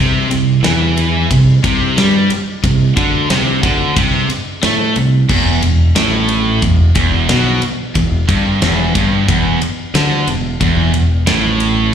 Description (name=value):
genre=hard rock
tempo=90 BPM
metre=4/4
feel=straight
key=E minor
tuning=A4 = 440 Hz
part: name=crunchy overdriven guitar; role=riff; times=0.0-11.9 s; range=E2 to A3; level=-16 LUFS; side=left 4 dB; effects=none
part: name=distorted electric guitar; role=riff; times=0.0-11.9 s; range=E2 to A3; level=-18 LUFS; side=right 3 dB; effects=distortion
part: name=scooped high-gain guitar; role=riff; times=0.0-11.9 s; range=E2 to A3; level=-18 LUFS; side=right 7 dB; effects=distortion
part: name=modern bright fingered electric bass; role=bass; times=0.0-11.9 s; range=E1 to A2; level=-18 LUFS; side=right 1 dB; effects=none
part: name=huge arena drum kit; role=drums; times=0.3-11.8 s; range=crash cymbal, kick drum, ride cymbal, snare drum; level=-18 LUFS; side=equal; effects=none
room=light reverb, small room ambience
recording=live gig heard through the venue's PA, club reverb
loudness=-11 LUFS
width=side -8 dB against mid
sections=0.0-11.9 A section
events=none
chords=0.0 C5; 5.3 Em